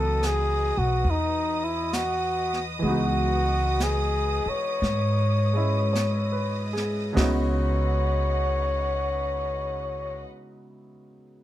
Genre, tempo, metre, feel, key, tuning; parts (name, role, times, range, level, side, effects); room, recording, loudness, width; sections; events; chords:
jazz ballad; 47-73 BPM; 4/4; swing 66% on 8ths; C# minor; A4 = 440 Hz
breathy trumpet; melody; 0.0-10.2 s; D#4 to C#5; -27 LUFS; left 2 dB
clear grand piano; accompaniment; 0.0-11.4 s; C#3 to D#5; -32 LUFS; right 1 dB
dark studio string section; sustained chords; 0.0-10.2 s; B4 to D#6; -35 LUFS; right 1 dB
upright bass; bass; 0.0-10.2 s; B1 to G#2; -26 LUFS; equal
jazz brush drum kit; drums; 0.2-8.2 s; brushed snare drum, hi-hat, kick drum, snare drum; -30 LUFS; right 1 dB
light reverb; -23 LUFS; side -13 dB against mid
0.0-7.2 A section; 7.2-11.4 B section
slowing down 0.0-7.2
0.0 C#m11